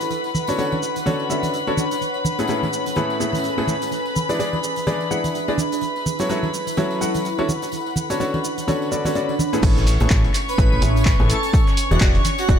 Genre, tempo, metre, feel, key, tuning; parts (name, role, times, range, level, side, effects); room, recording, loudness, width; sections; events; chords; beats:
piano house; 126 BPM; 4/4; swing 58% on 16ths; A major; A4 = 440 Hz
dark studio violin section; sustained chords; 0.0-12.6 s; B4 to C#6; -26 LUFS; left 1 dB; sidechain pumping
punchy analog drum machine; drums; 0.0-12.6 s; crash cymbal, handclaps, hi-hat, shaker; -30 LUFS; right 2 dB; analog delay
tambourine and congas; percussion; 0.0-12.6 s; -28 LUFS; right 2 dB; analog delay
ethereal airy pad; texture; 0.0-12.6 s; C#4 to G#5; -28 LUFS; right 1 dB; ensemble chorus, built-in reverb, sidechain pumping
clear upright piano; riff; 0.5-12.6 s; A2 to F#5; -24 LUFS; left 1 dB; sidechain pumping, low-pass filter, analog delay
deep dub fingered electric bass; bass; 9.6-12.6 s; E1 to A1; -19 LUFS; equal; sidechain pumping
dusty soul sampler-style drum kit; drums; 9.6-12.6 s; hi-hat, shaker, snare drum; -36 LUFS; right 1 dB
electronic kick drum; drums; 9.6-12.6 s; -18 LUFS; equal
airy dreamy lead; melody; 10.5-12.6 s; F#4 to B4; -25 LUFS; right 1 dB; chorus, analog delay
light reverb; echo-heavy mix; -18 LUFS; side -8 dB against mid
0.0-9.6 A section; 9.6-12.6 B section
drop 9.6-12.6
0.0 Dmaj7; 2.0 Amaj9; 3.9 E7; 5.6 F#m7; 7.5 Dmaj7; 9.6 Amaj9; 11.5 E7
| 0.11 0.58 1.06 1.53 | 2.01 2.49 2.96 3.44 | 3.92 4.39 4.87 5.34 | 5.82 6.30 6.77 7.25 | 7.73 8.20 8.68 9.15 | 9.63 10.11 10.58 11.06 | 11.54 12.01 12.49